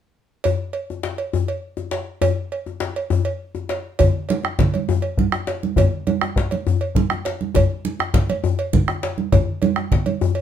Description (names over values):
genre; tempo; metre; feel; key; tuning
west african traditional, West African drum ensemble; 135 BPM (dotted quarters); 12/8; straight; none; none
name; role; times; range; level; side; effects
cowbell; percussion; 0.4-10.4 s; none; -24 LUFS; right 5 dB; none
djembe; percussion; 0.5-10.4 s; none; -22 LUFS; left 6 dB; none
bombo; percussion; 4.0-10.1 s; none; -19 LUFS; left 1 dB; none
congas; percussion; 4.0-10.2 s; none; -23 LUFS; right 6 dB; none
room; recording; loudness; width
moderate studio reverb, RT60 0.6 s; minimal, uncompressed stereo recording; -19 LUFS; side -9 dB against mid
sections
0.4-4.0 A section; 4.0-10.4 B section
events
none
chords
none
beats
| 0.44 0.89 1.33 1.78 | 2.22 2.67 3.11 3.55 | 4.00 4.44 4.89 5.33 | 5.77 6.22 6.66 7.11 | 7.55 7.99 8.44 8.88 | 9.32 9.77 10.21